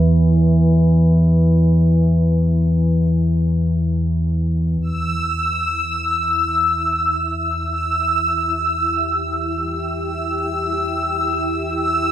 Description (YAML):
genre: dark ambient drone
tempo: free time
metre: none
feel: none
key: E minor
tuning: A4 = 440 Hz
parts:
  - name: deep rumbling drone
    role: drone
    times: 0.0-12.1 s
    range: E2 to E3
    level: -17 LUFS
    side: equal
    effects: built-in reverb
  - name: granular cloud pad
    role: sustained chords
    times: 5.7-12.1 s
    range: E4 to G4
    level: -27 LUFS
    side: equal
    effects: built-in reverb
  - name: bubbling stepped-filter texture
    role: texture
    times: 4.8-12.1 s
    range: E6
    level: -19 LUFS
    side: equal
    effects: chorus, built-in reverb
room: wet huge ambient reverb, RT60 9.1 s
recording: in a vast, echoing space, cassette tape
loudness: -16 LUFS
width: side -11 dB against mid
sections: 0.0-4.8 A section; 4.8-12.1 B section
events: filter sweep on synth drone 4.8-12.1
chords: 0.0 N.C.; 4.8 Em